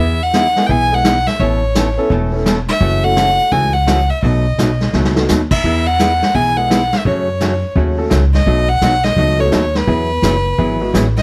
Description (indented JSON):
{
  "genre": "country, western swing",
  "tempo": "170 BPM",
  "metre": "4/4",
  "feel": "swing 64% on 8ths",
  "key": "E major",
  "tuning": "A4 = 437 Hz",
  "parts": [
    { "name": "clear fiddle", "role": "melody", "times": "0.0-11.2 s", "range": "B4 to G#5", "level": "-19 LUFS", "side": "equal", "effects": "none" },
    { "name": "archtop guitar, miked and amplified", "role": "accompaniment", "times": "0.0-11.1 s", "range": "B2 to A4", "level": "-21 LUFS", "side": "equal", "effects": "none" },
    { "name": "upright bass", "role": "bass", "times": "0.0-11.2 s", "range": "E1 to F#2", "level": "-20 LUFS", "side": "equal", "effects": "none" },
    { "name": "vintage brush drum kit", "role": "drums", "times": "0.3-11.2 s", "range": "brushed snare drum, crash cymbal, hi-hat, kick drum, snare drum", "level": "-21 LUFS", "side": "equal", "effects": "none" },
    { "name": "clear upright piano", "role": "accompaniment", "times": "0.6-10.9 s", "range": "G#3 to A4", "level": "-23 LUFS", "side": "equal", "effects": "none" }
  ],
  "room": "light reverb",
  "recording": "none",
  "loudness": "-15 LUFS",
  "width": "mono",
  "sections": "0.0-11.2 A section",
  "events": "drum fill 4.9-5.3",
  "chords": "0.0 E; 1.4 Aadd9; 2.8 F#m7; 4.2 B7; 5.6 E; 7.1 F#m; 8.5 B7; 9.9 Eadd9",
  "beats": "0.34 0.69 1.04 | 1.40 1.75 2.11 2.46 | 2.81 3.17 3.52 3.88 | 4.23 4.58 4.94 5.29 | 5.64 6.00 6.35 6.70 | 7.06 7.41 7.76 8.12 | 8.47 8.82 9.18 9.53 | 9.88 10.24 10.59 10.94"
}